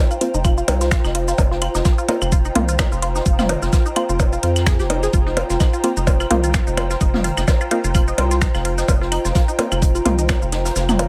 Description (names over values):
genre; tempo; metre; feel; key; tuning
minimal techno; 128 BPM; 4/4; swing 56% on 16ths; unclear; A4 = 439 Hz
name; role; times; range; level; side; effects
airy breathy pad; texture; 0.0-11.1 s; F4 to Bb5; -28 LUFS; equal; chorus, sidechain pumping
resonant blip pluck; riff; 0.1-11.1 s; Eb4 to Ab4; -28 LUFS; equal; phaser, sidechain pumping, tape echo
garage drum kit; drums; 0.1-11.1 s; cabasa, finger snaps, hi-hat; -28 LUFS; equal; none
filtered dub chord stab; stabs; 0.2-10.1 s; Bb3 to F4; -26 LUFS; equal; chorus, digital delay
jazz brush drum kit; drums; 0.2-11.1 s; hi-hat, snare drum; -37 LUFS; equal; high-pass filter on hats, high-pass filter on snare, high-pass filter on room
rubbery square bass; bass; 0.3-11.1 s; F1 to F2; -24 LUFS; equal; sidechain pumping
electronic kick drum; drums; 0.4-10.4 s; none; -19 LUFS; equal; none
electronic claves, percussion blips and toms; percussion; 0.4-11.1 s; none; -26 LUFS; equal; overdrive, digital delay
room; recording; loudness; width
little or no reverb; none; -18 LUFS; mono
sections
0.0-11.1 A section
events
kick drops out 10.8-11.1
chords
0.0 Fsus4